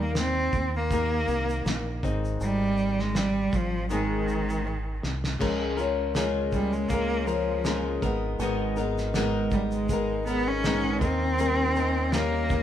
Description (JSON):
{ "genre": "acoustic pop", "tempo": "80 BPM", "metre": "4/4", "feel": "swing 55% on 16ths", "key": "unclear", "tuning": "A4 = 442 Hz", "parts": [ { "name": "warm cello", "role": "melody", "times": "0.0-12.6 s", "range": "Eb3 to Db4", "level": "-28 LUFS", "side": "right 1 dB", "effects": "analog delay" }, { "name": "flamenco guitar", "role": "accompaniment", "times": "0.0-12.6 s", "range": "Ab2 to Bb4", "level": "-29 LUFS", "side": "left 3 dB", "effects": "none" }, { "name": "deep dub fingered electric bass", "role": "bass", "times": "0.0-12.6 s", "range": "Ab1 to Eb2", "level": "-31 LUFS", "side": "right 1 dB", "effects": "none" }, { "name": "cloth-damped thuddy drum kit", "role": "drums", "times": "0.2-12.6 s", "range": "crash cymbal, kick drum, shaker, snare drum", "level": "-32 LUFS", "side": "equal", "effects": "none" }, { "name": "picked steel-string acoustic guitar", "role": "arpeggios", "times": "5.4-12.6 s", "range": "F3 to Bb4", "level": "-37 LUFS", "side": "right 5 dB", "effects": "none" } ], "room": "moderate large studio reverb, RT60 1.1 s", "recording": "band playing live in one room", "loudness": "-24 LUFS", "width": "side -10 dB against mid", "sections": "0.0-5.4 A section; 5.4-12.6 B section", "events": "drum fill 4.7-5.4", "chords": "0.0 Eb; 2.0 Ab; 5.4 Db6; 8.0 Abmadd9; 11.0 Eb7" }